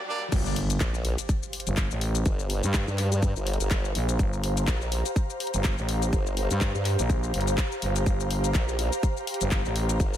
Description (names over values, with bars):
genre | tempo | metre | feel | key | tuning
bass house | 124 BPM | 4/4 | swing 56% on 16ths | G minor | A4 = 441 Hz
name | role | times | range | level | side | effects
riser and impact | sound effects | 0.0-2.3 s | none | -36 LUFS | equal | none
growling FM bass | bass | 0.3-10.0 s | G1 to G2 | -26 LUFS | equal | overdrive, sidechain pumping
electronic kick drum | drums | 0.3-10.1 s | none | -25 LUFS | equal | high-pass filter on kick
garage drum kit | drums | 0.3-10.2 s | crash cymbal, handclaps, hi-hat, shaker | -33 LUFS | left 4 dB | high-pass filter on snare, high-pass filter on hats, high-pass filter on perc, high-pass filter on cymbals
ethereal airy pad | texture | 1.1-10.2 s | G4 to Bb5 | -32 LUFS | right 1 dB | ensemble chorus, built-in reverb, sidechain pumping
formant-sweep wobble bass | bass | 0.8-10.2 s | G1 to G2 | -27 LUFS | equal | chorus, tube saturation, sidechain pumping
room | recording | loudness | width
light reverb, digital ambience | high-pass filter | -24 LUFS | side -11 dB against mid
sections
0.3-10.2 A section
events
break 0.0-0.3; riser 0.0-0.3; drop 0.3-10.2; impact 0.3-2.3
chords
0.3 Gm